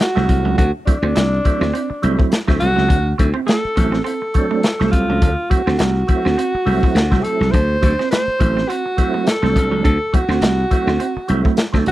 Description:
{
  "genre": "funk",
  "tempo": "104 BPM",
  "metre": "4/4",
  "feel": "swing 56% on 16ths",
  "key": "D mixolydian",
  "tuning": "A4 = 440 Hz",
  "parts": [
    { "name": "clear alto saxophone", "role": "melody", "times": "0.0-11.9 s", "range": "D4 to C5", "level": "-20 LUFS", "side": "equal", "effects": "none" },
    { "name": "percussive tonewheel organ", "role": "stabs", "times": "0.0-11.9 s", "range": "F3 to A4", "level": "-23 LUFS", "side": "right 4 dB", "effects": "chorus vibrato, fast rotary speaker" },
    { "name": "crunchy breakbeat drum kit", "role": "drums", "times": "0.0-11.9 s", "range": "hi-hat, kick drum, snare drum", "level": "-17 LUFS", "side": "left 1 dB", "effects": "none" },
    { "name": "semi-hollow electric guitar", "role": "riff", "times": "0.2-11.9 s", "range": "F#3 to D4", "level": "-26 LUFS", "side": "right 7 dB", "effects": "none" },
    { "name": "slap bass", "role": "bass", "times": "0.2-11.9 s", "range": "A1 to D2", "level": "-18 LUFS", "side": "equal", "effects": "none" }
  ],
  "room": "small room ambience",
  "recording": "dry, close 1970s-style studio recording",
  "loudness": "-14 LUFS",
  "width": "side -15 dB against mid",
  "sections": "0.0-11.9 A section",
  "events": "none",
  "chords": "0.0 D9"
}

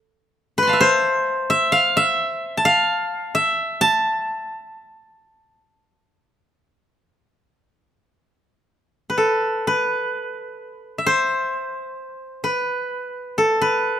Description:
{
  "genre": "japanese traditional, Japanese chamber music",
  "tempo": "64 BPM",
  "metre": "4/4",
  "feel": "rubato",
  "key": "A hirajoshi",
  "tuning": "A4 = 442 Hz",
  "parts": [
    { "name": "koto", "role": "solo", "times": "0.6-14.0 s", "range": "A4 to C6", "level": "-18 LUFS", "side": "equal", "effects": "none" }
  ],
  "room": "light reverb",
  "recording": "close, detailed microphones",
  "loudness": "-18 LUFS",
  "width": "side -10 dB against mid",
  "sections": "0.0-7.7 A section; 7.7-14.0 B section",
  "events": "none",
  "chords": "none"
}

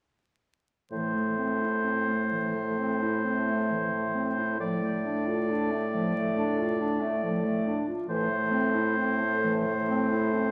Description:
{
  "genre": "classical, slow romantic movement for wind quintet",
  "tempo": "62-71 BPM",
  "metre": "4/4",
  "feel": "rubato",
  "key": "A minor",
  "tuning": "A4 = 440 Hz",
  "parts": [
    { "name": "clear oboe", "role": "second line", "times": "0.9-10.5 s", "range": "C5 to D5", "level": "-33 LUFS", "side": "equal", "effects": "none" },
    { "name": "dark clarinet", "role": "accompaniment", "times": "0.9-10.5 s", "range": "E3 to F4", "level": "-34 LUFS", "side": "equal", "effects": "none" },
    { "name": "mellow French horn", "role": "accompaniment", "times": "0.9-10.5 s", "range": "A3", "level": "-32 LUFS", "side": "equal", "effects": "none" },
    { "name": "dark bassoon", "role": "bass", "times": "0.9-10.5 s", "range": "A2", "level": "-36 LUFS", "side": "equal", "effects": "none" }
  ],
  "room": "wet recital hall reverb, RT60 1.6 s",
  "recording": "vinyl crackle",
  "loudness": "-28 LUFS",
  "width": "mono",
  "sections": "0.9-10.5 A section",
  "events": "none",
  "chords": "0.9 Am; 4.6 Dm/A; 8.1 Am"
}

